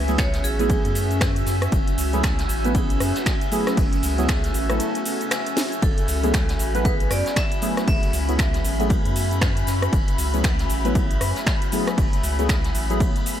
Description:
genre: deep house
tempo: 117 BPM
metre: 4/4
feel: swing 60% on 16ths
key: F# minor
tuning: A4 = 441 Hz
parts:
  - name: vibraphone with hard mallets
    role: melody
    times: 0.0-1.2, 5.8-9.4 s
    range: G#4 to E5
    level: -31 LUFS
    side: right 3 dB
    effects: ping-pong delay
  - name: deep dark ambient pad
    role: sustained chords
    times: 0.0-13.4 s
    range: E5 to E6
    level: -31 LUFS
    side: left 1 dB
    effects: chorus, built-in reverb, sidechain pumping
  - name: deep mellow chord stab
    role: stabs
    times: 0.0-13.4 s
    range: F#3 to B4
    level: -27 LUFS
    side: equal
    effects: chorus, sidechain pumping, digital delay
  - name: round analog bass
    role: bass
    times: 0.0-13.1 s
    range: F#1 to F#2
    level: -25 LUFS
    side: equal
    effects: sidechain pumping
  - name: granular cloud pad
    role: texture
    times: 0.0-13.4 s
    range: A3 to E5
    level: -31 LUFS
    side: equal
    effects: built-in reverb, sidechain pumping
  - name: house drum kit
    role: drums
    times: 0.1-13.4 s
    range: finger snaps, hi-hat, rim click, shaker, snare drum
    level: -28 LUFS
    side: equal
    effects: overdrive
  - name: electronic kick drum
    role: drums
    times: 0.2-13.1 s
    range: none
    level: -22 LUFS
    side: equal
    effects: overdrive
  - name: vintage brush drum kit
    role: drums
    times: 0.2-13.4 s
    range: hi-hat, ride cymbal, snare drum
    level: -35 LUFS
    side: equal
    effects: sidechain pumping on cymbals, high-pass filter on cymbals, sidechain pumping on hats, high-pass filter on hats, high-pass filter on snare, high-pass filter on room
  - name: soft string machine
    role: texture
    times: 5.8-13.4 s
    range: B5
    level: -36 LUFS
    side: right 1 dB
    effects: ensemble chorus
room: light reverb, small room ambience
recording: none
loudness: -19 LUFS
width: side -10 dB against mid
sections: 0.0-13.4 A section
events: break 4.8-5.8; drum fill 5.6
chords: 0.0 F#m11

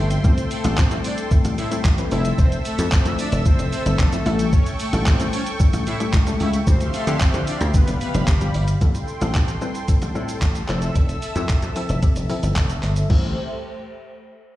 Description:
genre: dance-pop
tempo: 112 BPM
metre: 4/4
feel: straight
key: A minor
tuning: A4 = 440 Hz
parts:
  - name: soft supersaw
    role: melody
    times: 0.0-8.7 s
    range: G3 to E5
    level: -30 LUFS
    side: equal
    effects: tape echo
  - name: hollow square pluck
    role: accompaniment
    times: 0.0-13.3 s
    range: F3 to B4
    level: -28 LUFS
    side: left 3 dB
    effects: chorus, sidechain pumping, low-pass filter
  - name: lush unison pad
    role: sustained chords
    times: 0.0-13.3 s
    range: A3 to E6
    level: -30 LUFS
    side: equal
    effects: chorus, sidechain pumping, low-pass filter
  - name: dry thumbed slap bass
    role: bass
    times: 0.0-13.3 s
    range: F1 to D3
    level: -22 LUFS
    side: equal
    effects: sidechain pumping
  - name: gated 80s digital drum machine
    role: drums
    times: 0.1-13.2 s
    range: crash cymbal, handclaps, hi-hat, kick drum, shaker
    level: -19 LUFS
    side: equal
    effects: gated reverb
room: little or no reverb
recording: played on a big sound system in a bare room, stone room reverb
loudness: -18 LUFS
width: side -15 dB against mid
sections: 0.0-8.8 A section; 8.8-13.1 B section; 13.1-14.6 C section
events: drop 0.0-8.8; filter sweep 8.8-13.1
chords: 0.2 Am7; 2.1 Fmaj7; 4.3 A7; 6.7 Dm11; 7.7 G7; 8.8 Am7; 10.7 Fmaj7; 13.1 Am7

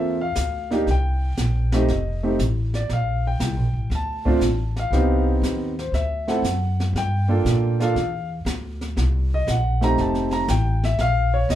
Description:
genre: jazz, small-group swing and bop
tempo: 118 BPM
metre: 4/4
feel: swing 68% on 8ths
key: F major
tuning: A4 = 440 Hz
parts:
  - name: warm concert grand piano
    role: accompaniment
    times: 0.0-11.6 s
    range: A3 to Bb5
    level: -23 LUFS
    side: equal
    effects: none
  - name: upright bass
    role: bass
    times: 0.0-11.6 s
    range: F1 to Bb2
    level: -22 LUFS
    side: equal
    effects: none
  - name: jazz brush drum kit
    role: drums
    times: 0.4-11.6 s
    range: brushed snare drum, hi-hat, kick drum, snare drum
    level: -29 LUFS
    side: equal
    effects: none
room: wet small room reverb, RT60 0.5 s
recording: heard from further back in the room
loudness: -20 LUFS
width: side -12 dB against mid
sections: 0.0-11.6 A section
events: none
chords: 0.0 Gm11; 0.9 Cm7; 1.9 F7; 2.9 Bbmaj9; 4.9 Cmmaj7; 5.9 D7; 6.9 Gm9; 9.0 Cm7; 10.0 F7; 11.0 Bbm

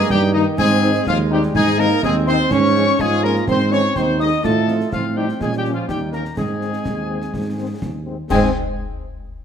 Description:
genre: military-style march for wind band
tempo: 124 BPM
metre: 2/4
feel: straight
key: Ab major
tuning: A4 = 440 Hz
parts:
  - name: mellow trumpet section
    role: melody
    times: 0.0-8.5 s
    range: Eb4 to Eb5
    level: -24 LUFS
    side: left 2 dB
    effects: none
  - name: bright piccolo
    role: second line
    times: 0.0-8.6 s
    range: Eb5 to Eb6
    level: -26 LUFS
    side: left 5 dB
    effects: none
  - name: mellow euphonium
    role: second line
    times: 0.0-8.5 s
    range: Eb3 to Eb4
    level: -24 LUFS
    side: right 4 dB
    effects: none
  - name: warm trombone section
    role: sustained chords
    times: 0.0-8.5 s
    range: Ab3 to F4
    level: -24 LUFS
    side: right 2 dB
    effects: none
  - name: mellow tuba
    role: bass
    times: 0.0-8.5 s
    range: Eb2 to Bb2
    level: -21 LUFS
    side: right 2 dB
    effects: none
  - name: concert snare drum, concert bass drum and clash cymbals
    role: drums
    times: 0.1-8.6 s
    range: none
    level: -28 LUFS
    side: left 2 dB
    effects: none
  - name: mellow French horn section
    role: accompaniment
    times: 0.3-8.5 s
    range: Eb3 to Eb4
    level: -26 LUFS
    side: left 7 dB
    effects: none
room: moderate scoring stage reverb, RT60 1.6 s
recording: none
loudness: -16 LUFS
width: side -8 dB against mid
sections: 0.0-8.3 A section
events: none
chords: 0.0 Eb/G; 0.6 Ab; 2.5 Db/Ab; 3.5 Ab; 4.4 F7/A; 5.4 Bbm; 5.9 Eb7; 6.4 Ab

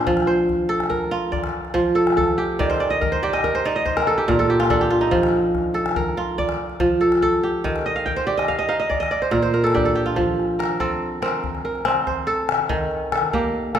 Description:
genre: west african traditional, West African string and xylophone music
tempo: 95 BPM (dotted quarters)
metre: 12/8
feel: straight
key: F mixolydian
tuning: A4 = 440 Hz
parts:
  - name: kora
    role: arpeggios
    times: 0.0-13.8 s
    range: Bb2 to G5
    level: -19 LUFS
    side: right 2 dB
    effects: none
  - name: calabash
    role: percussion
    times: 0.1-13.8 s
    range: none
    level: -26 LUFS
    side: left 5 dB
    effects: none
room: wet recital hall reverb, RT60 1.8 s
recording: recorded in a church or concert hall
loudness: -18 LUFS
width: side -9 dB against mid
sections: 0.0-10.2 A section; 10.2-13.8 B section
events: kora fill 2.6-5.1, 7.9-10.2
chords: 0.1 F; 2.6 Eb; 3.9 Bb; 5.1 F; 7.7 Eb; 8.9 Bb; 10.2 F; 12.7 Eb

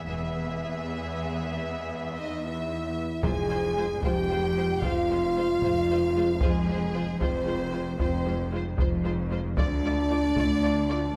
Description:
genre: cinematic, epic orchestral film score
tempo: 76 BPM (dotted quarters)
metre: 12/8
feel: straight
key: unclear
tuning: A4 = 436 Hz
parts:
  - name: warm symphonic violin section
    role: melody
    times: 0.0-11.0 s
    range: C5 to E5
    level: -40 LUFS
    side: equal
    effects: none
  - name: clear symphonic violin section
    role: second line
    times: 0.0-11.1 s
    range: G#4 to Ab5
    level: -38 LUFS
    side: equal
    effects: none
  - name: rich symphonic viola section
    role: accompaniment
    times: 0.0-11.0 s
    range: Ab3 to F4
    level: -39 LUFS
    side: equal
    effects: none
  - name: rich symphonic cello section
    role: bass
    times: 0.0-11.1 s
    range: D2 to F2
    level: -35 LUFS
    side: equal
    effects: none
  - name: mellow French horn section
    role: sustained chords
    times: 0.1-11.1 s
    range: Ab3 to Ab4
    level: -31 LUFS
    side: equal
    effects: none
  - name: clear symphonic double bass section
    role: bass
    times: 0.1-11.1 s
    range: E1 to D2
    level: -35 LUFS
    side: equal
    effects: none
  - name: taiko ensemble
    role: drums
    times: 3.2-10.9 s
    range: none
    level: -33 LUFS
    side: equal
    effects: none
room: moderate concert hall reverb, RT60 2.1 s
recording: none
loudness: -27 LUFS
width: mono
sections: 0.0-3.2 A section; 3.2-11.2 B section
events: build-up 0.0-3.2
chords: 0.0 E; 3.2 Fm; 9.6 Dm

